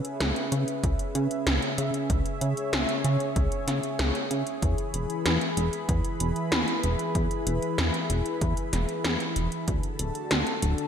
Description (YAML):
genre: synthwave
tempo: 95 BPM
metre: 4/4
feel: straight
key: unclear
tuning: A4 = 440 Hz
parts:
  - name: warm analog pad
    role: sustained chords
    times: 0.0-10.9 s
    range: C#3 to B5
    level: -30 LUFS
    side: equal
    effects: chorus, sidechain pumping, shimmer reverb
  - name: 80s electronic pad drums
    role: drums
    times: 0.0-10.9 s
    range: hi-hat, snare drum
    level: -29 LUFS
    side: equal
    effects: gated reverb
  - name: chorused synth bass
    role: bass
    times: 0.2-10.7 s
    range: D1 to C#3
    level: -27 LUFS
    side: equal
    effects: none
  - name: electronic kick drum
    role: drums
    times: 0.8-9.8 s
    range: none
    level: -29 LUFS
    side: equal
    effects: none
room: moderate lush hall reverb, RT60 2.1 s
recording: bright 1980s-style digital production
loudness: -24 LUFS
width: side -8 dB against mid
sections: 0.0-10.9 A section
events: none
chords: 0.0 C#m7; 4.6 E; 9.7 D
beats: 0.20 0.84 1.47 | 2.10 2.73 3.36 3.99 | 4.62 5.26 5.89 6.52 | 7.15 7.78 8.41 9.05 | 9.68 10.31